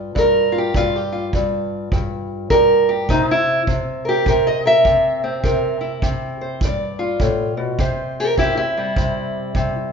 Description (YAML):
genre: acoustic country blues, solo or duo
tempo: 102 BPM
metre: 4/4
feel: swing 62% on 8ths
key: C mixolydian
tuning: A4 = 441 Hz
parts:
  - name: fingerpicked steel-string acoustic guitar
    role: melody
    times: 0.0-9.9 s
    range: G2 to E5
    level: -17 LUFS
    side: equal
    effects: none
  - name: kick drum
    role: drums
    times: 0.2-9.7 s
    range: none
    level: -22 LUFS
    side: right 1 dB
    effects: none
room: wet recital hall reverb, RT60 1.3 s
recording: recorded in a church or concert hall, nothing above 7.5 kHz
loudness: -16 LUFS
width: side -6 dB against mid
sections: 0.0-7.8 A section; 7.8-9.9 A section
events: steel-string acoustic guitar solo 0.0-7.8, 7.8-9.9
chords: 0.0 G7(no3); 3.1 C7; 6.6 G7(no3); 7.8 C